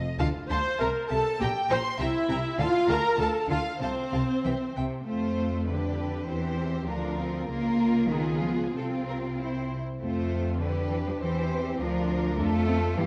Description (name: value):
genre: quick classical-period movement for string orchestra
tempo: 99 BPM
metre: 2/4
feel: rubato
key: F major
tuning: A4 = 440 Hz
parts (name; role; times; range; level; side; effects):
- warm studio violin section; second line; 0.0-13.1 s; E4 to Bb5; -40 LUFS; equal; none
- rich studio violin section; melody; 0.2-13.1 s; G4 to C6; -37 LUFS; equal; none
- warm studio viola section; accompaniment; 0.2-13.1 s; Bb3 to C5; -33 LUFS; equal; none
- clear studio double bass section; bass; 0.2-13.1 s; Bb1 to G2; -35 LUFS; equal; none
- rich studio cello section; bass; 0.2-13.1 s; Bb2 to C4; -33 LUFS; equal; none
room: moderate scoring stage reverb, RT60 1.6 s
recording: dark, warm production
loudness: -28 LUFS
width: mono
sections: 0.0-5.1 A section; 5.1-13.1 B section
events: none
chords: 0.2 Dm; 0.8 Am; 1.4 Gm; 2.0 C; 2.6 Dm; 3.8 F/C; 5.1 F; 5.7 G7/F; 6.3 C/E; 6.9 Bb/D; 7.5 Bbm/Db; 8.1 Db7; 8.8 F5/C; 10.0 F; 10.6 G7/F; 11.2 C/E; 11.8 Bb/D; 12.4 Dm/F (rootless)